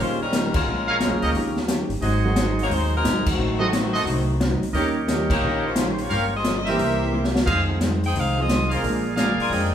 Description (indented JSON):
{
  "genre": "jazz, big band swing",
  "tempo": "176 BPM",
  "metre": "4/4",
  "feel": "swing 64% on 8ths",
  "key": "Eb mixolydian",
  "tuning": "A4 = 441 Hz",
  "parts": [
    { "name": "bright saxophone section", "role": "melody", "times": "0.0-9.7 s", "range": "Eb3 to Ab5", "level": "-26 LUFS", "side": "left 2 dB", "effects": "none" },
    { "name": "vintage hollow-body jazz guitar", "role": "accompaniment", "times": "0.0-9.7 s", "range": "F2 to G4", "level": "-27 LUFS", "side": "left 1 dB", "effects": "none" },
    { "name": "warm grand piano", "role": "accompaniment", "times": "0.0-9.3 s", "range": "Eb3 to Ab4", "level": "-28 LUFS", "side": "right 3 dB", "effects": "none" },
    { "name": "upright bass", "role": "bass", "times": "0.0-9.7 s", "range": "G1 to F2", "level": "-26 LUFS", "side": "equal", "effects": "none" },
    { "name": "open jazz drum kit", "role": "drums", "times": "0.3-9.6 s", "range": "crash cymbal, hi-hat, kick drum, snare drum", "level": "-25 LUFS", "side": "equal", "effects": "none" },
    { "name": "brilliant trumpet section", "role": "stabs", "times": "0.9-9.7 s", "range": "Gb4 to F5", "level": "-26 LUFS", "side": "right 2 dB", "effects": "none" }
  ],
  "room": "wet large studio reverb, RT60 0.8 s",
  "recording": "band playing live in one room",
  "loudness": "-19 LUFS",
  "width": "side -9 dB against mid",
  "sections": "0.0-9.7 A section",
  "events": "band accent 0.5, 3.2, 5.3; drum fill 7.1-7.5",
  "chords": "0.0 Eb7; 0.7 Bbm7; 1.3 Eb7; 2.0 Ab7; 3.4 Adim7; 4.7 Eb7; 6.1 Gm7b5; 6.8 C7; 7.5 Fm7; 8.8 Bb7"
}